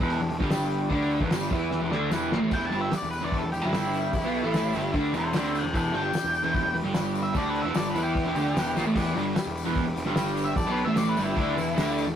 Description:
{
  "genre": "garage rock duo or trio",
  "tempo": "149 BPM",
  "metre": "4/4",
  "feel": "straight",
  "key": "E minor",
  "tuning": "A4 = 439 Hz",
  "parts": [
    { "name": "crunchy overdriven guitar", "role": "riff", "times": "0.0-12.2 s", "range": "E2 to E4", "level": "-27 LUFS", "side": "right 1 dB", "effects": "none" },
    { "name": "fuzz picked electric bass", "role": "bass", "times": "0.0-12.2 s", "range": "E1 to E2", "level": "-31 LUFS", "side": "equal", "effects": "overdrive, tube saturation" },
    { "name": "cloth-damped thuddy drum kit", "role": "drums", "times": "0.0-12.1 s", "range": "crash cymbal, hi-hat, kick drum, snare drum", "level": "-31 LUFS", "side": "equal", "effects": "none" },
    { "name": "combo organ", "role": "sustained chords", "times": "0.1-12.1 s", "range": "E4 to D5", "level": "-37 LUFS", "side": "left 3 dB", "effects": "none" },
    { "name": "tambourine", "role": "percussion", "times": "0.5-12.1 s", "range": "none", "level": "-46 LUFS", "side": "left 5 dB", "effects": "none" },
    { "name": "octave-fuzz lead guitar", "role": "melody", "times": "2.5-12.0 s", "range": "E4 to A5", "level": "-30 LUFS", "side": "left 1 dB", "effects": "distortion" }
  ],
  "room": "moderate studio reverb, RT60 0.7 s",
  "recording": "rough rehearsal-room recording, tube saturation",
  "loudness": "-24 LUFS",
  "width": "side -9 dB against mid",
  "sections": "0.0-2.5 A section; 2.5-12.2 B section",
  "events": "drum fill 1.7-2.5, 8.8; lead electric guitar solo 2.5-12.2",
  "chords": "0.0 Em"
}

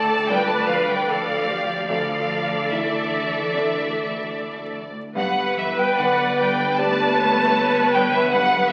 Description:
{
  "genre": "cinematic",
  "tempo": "74 BPM",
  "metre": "4/4",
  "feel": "rubato",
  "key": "unclear",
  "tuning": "A4 = 440 Hz",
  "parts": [
    { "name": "rich symphonic violin section", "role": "melody", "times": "0.0-8.7 s", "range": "B4 to D5", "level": "-30 LUFS", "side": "equal", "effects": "none" },
    { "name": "bright symphonic violin section", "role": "second line", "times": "0.0-8.7 s", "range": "E5 to A5", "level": "-25 LUFS", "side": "equal", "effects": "none" },
    { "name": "clear symphonic viola section", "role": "accompaniment", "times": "0.0-8.7 s", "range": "G4 to B4", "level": "-26 LUFS", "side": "equal", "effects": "none" },
    { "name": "felt-muted upright piano", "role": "accompaniment", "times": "0.0-8.7 s", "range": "D2 to D5", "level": "-32 LUFS", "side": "equal", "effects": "none" },
    { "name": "rich symphonic cello section", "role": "bass", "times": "0.0-8.7 s", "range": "E3 to A3", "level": "-34 LUFS", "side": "equal", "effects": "none" },
    { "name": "rich symphonic double bass section", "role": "bass", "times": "0.0-8.7 s", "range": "G1 to D2", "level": "-34 LUFS", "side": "equal", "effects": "none" }
  ],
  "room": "wet recital hall reverb, RT60 1.6 s",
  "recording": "very old 78 rpm record, vinyl crackle, nothing above 10.5 kHz",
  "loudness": "-21 LUFS",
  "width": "mono",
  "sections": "0.0-8.7 A section",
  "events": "none",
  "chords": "0.0 Dmadd9; 5.2 G"
}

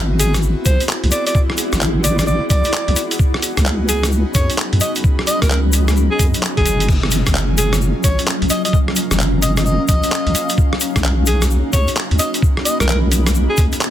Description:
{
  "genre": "UK garage, two-step garage",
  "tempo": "130 BPM",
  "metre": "4/4",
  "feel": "swing 64% on 16ths",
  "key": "F# major",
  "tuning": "A4 = 441 Hz",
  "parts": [
    { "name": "airy breathy pad", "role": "sustained chords", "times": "0.0-13.9 s", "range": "A#3 to A#4", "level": "-28 LUFS", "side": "equal", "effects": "chorus, sidechain pumping" },
    { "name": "deep soft wobble bass", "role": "bass", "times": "0.0-13.7 s", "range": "F#1 to F#2", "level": "-16 LUFS", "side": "equal", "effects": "chorus" },
    { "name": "granular cloud pad", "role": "texture", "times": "0.1-13.9 s", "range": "F#3 to B#5", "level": "-24 LUFS", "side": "left 1 dB", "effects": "built-in reverb, sidechain pumping" },
    { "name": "breathy alto saxophone", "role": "melody", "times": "0.2-13.6 s", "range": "G#4 to D#5", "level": "-23 LUFS", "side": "equal", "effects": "ping-pong delay" },
    { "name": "boom bap sampler-style drum kit", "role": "drums", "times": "0.2-13.9 s", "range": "crash cymbal, handclaps, hi-hat, rim click", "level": "-21 LUFS", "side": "right 1 dB", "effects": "soft clipping on snare" },
    { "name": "egg shaker", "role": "percussion", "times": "0.2-13.9 s", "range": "none", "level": "-25 LUFS", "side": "left 7 dB", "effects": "none" },
    { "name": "electronic kick drum", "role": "drums", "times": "0.7-13.7 s", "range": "none", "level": "-16 LUFS", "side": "equal", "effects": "none" }
  ],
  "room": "little or no reverb",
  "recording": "dense, heavily limited modern master",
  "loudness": "-14 LUFS",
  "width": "side -11 dB against mid",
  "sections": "0.0-13.9 A section",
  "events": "none",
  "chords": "0.0 G#7alt; 3.0 C#9sus4; 6.9 F#maj7; 10.6 Bmaj9"
}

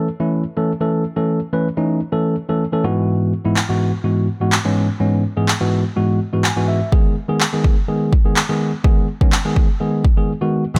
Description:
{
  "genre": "dance-pop",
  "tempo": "125 BPM",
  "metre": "4/4",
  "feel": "straight",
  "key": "unclear",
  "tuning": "A4 = 440 Hz",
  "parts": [
    { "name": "tine electric piano", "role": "accompaniment", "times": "0.0-10.8 s", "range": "G#2 to G#5", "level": "-20 LUFS", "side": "equal", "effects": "sidechain pumping" },
    { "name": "deep house drum kit", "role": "drums", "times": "3.6-10.8 s", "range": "crash cymbal, handclaps, kick drum", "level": "-19 LUFS", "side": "equal", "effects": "none" }
  ],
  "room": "digital ambience",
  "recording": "none",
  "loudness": "-18 LUFS",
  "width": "mono",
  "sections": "0.0-10.8 A section",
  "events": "tine electric piano fill 6.2-6.9; break 10.3-10.8",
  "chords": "0.0 A; 2.8 Eadd9/G#; 6.9 G#m"
}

